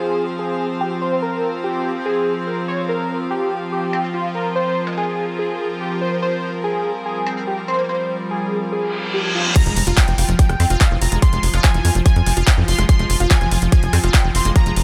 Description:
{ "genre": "psychedelic trance", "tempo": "144 BPM", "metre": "4/4", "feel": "straight", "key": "F minor", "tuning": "A4 = 439 Hz", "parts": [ { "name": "unison lead", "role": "melody", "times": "0.0-14.8 s", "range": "F4 to C6", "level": "-25 LUFS", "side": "equal", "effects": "phaser, sidechain pumping, tape echo" }, { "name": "evolving wavetable pad", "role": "sustained chords", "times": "0.0-14.8 s", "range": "F3 to F4", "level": "-30 LUFS", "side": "equal", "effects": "chorus, built-in reverb, sidechain pumping" }, { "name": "dark studio string section", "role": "texture", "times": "0.0-9.6 s", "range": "C4 to F5", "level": "-30 LUFS", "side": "equal", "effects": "sidechain pumping" }, { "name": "metallic wobble bass", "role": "second line", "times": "3.9-8.0, 10.6-14.6 s", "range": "Ab3 to C4", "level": "-35 LUFS", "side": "equal", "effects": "lush chorus, sidechain pumping, high-pass filter, tape echo" }, { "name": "reverse cymbal and impact", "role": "sound effects", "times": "8.9-11.2 s", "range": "none", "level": "-26 LUFS", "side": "equal", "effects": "none" }, { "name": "unison pluck", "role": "riff", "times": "9.6-14.7 s", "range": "E3 to F4", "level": "-28 LUFS", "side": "equal", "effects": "cassette tape, sidechain pumping, digital delay" }, { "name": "big-room dance drum kit", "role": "drums", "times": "9.6-14.8 s", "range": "crash cymbal, handclaps, hi-hat, rim click", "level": "-25 LUFS", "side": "equal", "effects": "none" }, { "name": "electronic kick drum", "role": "drums", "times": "9.6-14.6 s", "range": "none", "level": "-17 LUFS", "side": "equal", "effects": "none" }, { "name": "tight sequencer bass", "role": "bass", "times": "9.7-14.8 s", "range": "F1 to F2", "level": "-20 LUFS", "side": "equal", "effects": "none" } ], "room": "light reverb, digital ambience", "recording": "none", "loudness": "-19 LUFS", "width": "mono", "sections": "0.0-9.6 A section; 9.6-14.8 B section", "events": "reverse cymbal 8.9-9.6; drop 9.6-14.8; impact 9.6-11.2", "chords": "0.0 F5" }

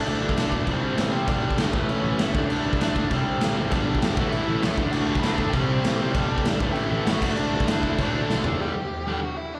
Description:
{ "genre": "punk rock", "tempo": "197 BPM", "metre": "4/4", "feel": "straight", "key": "D major", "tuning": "A4 = 440 Hz", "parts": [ { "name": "high-gain lead guitar", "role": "melody", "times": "0.0-9.6 s", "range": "A3 to B5", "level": "-34 LUFS", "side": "equal", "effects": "distortion, slapback echo" }, { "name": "distorted electric guitar", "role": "riff", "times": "0.0-9.2 s", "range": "G2 to D4", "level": "-30 LUFS", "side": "equal", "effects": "overdrive, slapback echo" }, { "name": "fuzz picked electric bass", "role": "bass", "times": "0.0-8.6 s", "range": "F#1 to C3", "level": "-31 LUFS", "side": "equal", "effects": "overdrive" }, { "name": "raw garage drum kit", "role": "drums", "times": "0.1-8.5 s", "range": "crash cymbal, kick drum, snare drum, toms", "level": "-28 LUFS", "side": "equal", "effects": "none" }, { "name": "distorted electric guitar", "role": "riff", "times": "3.7-9.2 s", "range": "G2 to D4", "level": "-35 LUFS", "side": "equal", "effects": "none" } ], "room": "light reverb, studio ambience", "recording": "live gig heard through the venue's PA, recital hall reverb", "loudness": "-24 LUFS", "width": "mono", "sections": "0.0-8.6 A section", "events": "drum fill 8.3-8.6", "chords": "0.0 D5; 0.7 C5; 1.3 G; 1.7 A; 2.4 D5; 3.1 C5; 3.7 G; 4.2 A; 4.8 D; 5.5 C5; 6.2 G; 6.6 A5; 7.2 D5; 8.6 G5" }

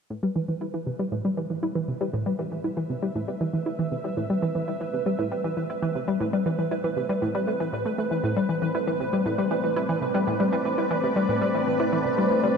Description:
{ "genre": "ambient, sequencer-driven space music", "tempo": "118 BPM", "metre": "4/4", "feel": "straight", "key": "A minor", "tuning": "A4 = 440 Hz", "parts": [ { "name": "string machine, full ensemble", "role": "sustained chords", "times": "0.1-12.6 s", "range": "A3 to E5", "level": "-28 LUFS", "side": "equal", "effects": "ensemble chorus" }, { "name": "analog pluck", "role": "riff", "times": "0.1-12.5 s", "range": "A2 to E4", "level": "-26 LUFS", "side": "left 1 dB", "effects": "chorus, ping-pong delay" }, { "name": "pulsing gated texture", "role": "texture", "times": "0.1-12.6 s", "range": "B4", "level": "-32 LUFS", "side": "right 7 dB", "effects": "chorus, built-in reverb" } ], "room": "wet huge ambient reverb, RT60 7.2 s", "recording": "none", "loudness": "-24 LUFS", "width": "side -6 dB against mid", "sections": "0.1-12.6 A section", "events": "fade-in on string machine 0.1-12.6; filter sweep on synth arpeggio sound 0.1-12.6", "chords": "0.1 Amadd9" }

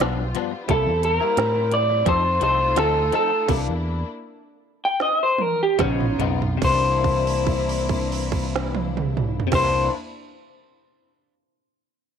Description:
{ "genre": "straight-eighth soul blues", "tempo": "70-88 BPM", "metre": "4/4", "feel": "swing 53% on 16ths", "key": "C mixolydian", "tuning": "A4 = 440 Hz", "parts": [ { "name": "rich studio string section", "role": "sustained chords", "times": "0.0-9.9 s", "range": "G3 to F4", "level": "-33 LUFS", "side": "left 2 dB", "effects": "none" }, { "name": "direct-recorded clean electric guitar", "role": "stabs", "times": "0.0-10.0 s", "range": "G2 to A4", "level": "-28 LUFS", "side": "left 14 dB", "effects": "ensemble chorus" }, { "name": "fingered electric bass with an envelope filter", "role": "bass", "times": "0.0-9.9 s", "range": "Bb1 to A2", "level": "-25 LUFS", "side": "equal", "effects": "none" }, { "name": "organic electronic drum kit", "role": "drums", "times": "0.0-9.7 s", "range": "crash cymbal, hi-hat, kick drum, snare drum, toms", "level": "-26 LUFS", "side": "right 6 dB", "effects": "none" }, { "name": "electric guitar through a small old amp", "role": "melody", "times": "0.7-9.9 s", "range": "Db4 to G5", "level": "-21 LUFS", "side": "equal", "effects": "none" } ], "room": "little or no reverb", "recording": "1960s-style stereo with parts hard left and right", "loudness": "-19 LUFS", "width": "side -7 dB against mid", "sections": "0.0-6.6 A section; 6.6-10.0 B section", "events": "slowing down 0.7-6.6; stop 3.5-5.8; drum fill 5.0-6.6; held note 6.6-9.5", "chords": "0.0 G7; 0.7 C7; 2.1 F7; 3.5 C9; 5.8 Db9; 6.6 C9" }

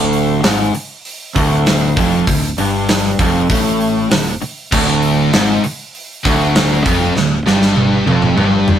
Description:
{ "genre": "hard rock", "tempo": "98 BPM", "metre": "4/4", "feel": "straight", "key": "unclear", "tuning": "A4 = 441 Hz", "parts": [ { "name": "biting overdriven guitar", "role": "riff", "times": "0.0-8.8 s", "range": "D2 to A2", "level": "-16 LUFS", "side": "left 3 dB", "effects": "none" }, { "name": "overdriven semi-hollow guitar", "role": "riff", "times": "0.0-8.8 s", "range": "D2 to A2", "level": "-19 LUFS", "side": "right 6 dB", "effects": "none" }, { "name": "fingered electric bass", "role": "bass", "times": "0.0-8.8 s", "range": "D1 to A1", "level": "-23 LUFS", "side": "equal", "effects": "none" }, { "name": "gated 80s drum kit", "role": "drums", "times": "0.1-8.8 s", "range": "crash cymbal, hi-hat, kick drum, snare drum, toms", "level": "-17 LUFS", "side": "right 1 dB", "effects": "none" }, { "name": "scooped high-gain guitar", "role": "riff", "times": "4.7-8.8 s", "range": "D2 to G#2", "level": "-19 LUFS", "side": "equal", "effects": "distortion" } ], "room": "light reverb", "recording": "rough rehearsal-room recording, warm saturation", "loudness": "-12 LUFS", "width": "side -10 dB against mid", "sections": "0.0-8.8 A section", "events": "drum fill 7.2-8.8", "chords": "0.0 D5" }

